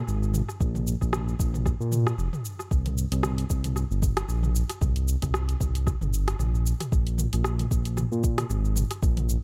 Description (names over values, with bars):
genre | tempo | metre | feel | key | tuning
organic downtempo | 114 BPM | 4/4 | swing 56% on 16ths | unclear | A4 = 440 Hz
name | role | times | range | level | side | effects
smooth synth bass | bass | 0.0-9.4 s | F1 to Bb2 | -28 LUFS | equal | sidechain pumping
deep house drum kit | drums | 0.1-9.4 s | hi-hat, rim click, shaker, toms | -34 LUFS | equal | tape echo
electronic kick drum | drums | 0.6-9.1 s | none | -28 LUFS | equal | none
room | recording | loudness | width
little or no reverb | echo-heavy mix | -26 LUFS | mono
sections
0.0-9.4 A section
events
none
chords
none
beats
0.08 | 0.60 1.13 1.66 2.18 | 2.71 3.24 3.76 4.29 | 4.82 5.34 5.87 6.39 | 6.92 7.45 7.97 8.50 | 9.03